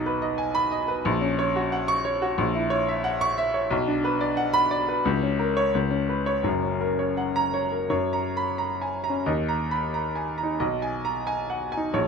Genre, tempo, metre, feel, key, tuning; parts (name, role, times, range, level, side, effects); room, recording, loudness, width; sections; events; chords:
classical, virtuoso piano study; 90 BPM; 2/4; rubato; F# major; A4 = 440 Hz
clear grand piano; solo; 0.0-12.1 s; F#1 to C#6; -23 LUFS; equal
moderate studio reverb, RT60 0.9 s; minimal, uncompressed stereo recording; -23 LUFS; side -6 dB against mid
0.0-7.9 A section; 7.9-12.1 A section
0.0 B6; 1.1 F#/A#; 2.4 F#7/A#; 3.7 Bm; 5.1 A#m/C#; 5.7 Bsus2/C#; 6.4 F#; 9.3 D#5; 10.6 B6